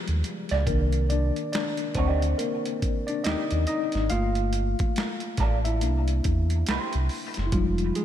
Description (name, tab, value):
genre	R&B, neo-soul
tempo	70 BPM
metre	4/4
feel	swing 60% on 16ths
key	unclear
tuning	A4 = 440 Hz
part	mellow tine electric piano	accompaniment	0.0-8.0 s	Eb3 to F5	-28 LUFS	left 3 dB	medium stereo tremolo
part	sub bass with octave	bass	0.1-7.9 s	F1 to E2	-25 LUFS	equal	none
part	boom bap sampler-style drum kit	drums	0.1-8.0 s	hi-hat, kick drum, snare drum	-30 LUFS	equal	overdrive
part	electric guitar through a small old amp	second line	0.5-6.9 s	Bb3 to D5	-34 LUFS	right 4 dB	wah, lush chorus, ping-pong delay
room	light reverb, digital ambience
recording	none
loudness	-23 LUFS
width	side -11 dB against mid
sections	0.0-7.5 A section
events	tine electric piano solo 0.0-7.5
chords	0.0 G7b9; 0.7 Cm9; 4.1 Gm9; 5.8 C7; 7.5 Fm9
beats	| 0.67 1.53 2.38 3.24 | 4.10 4.96 5.81 6.67 | 7.53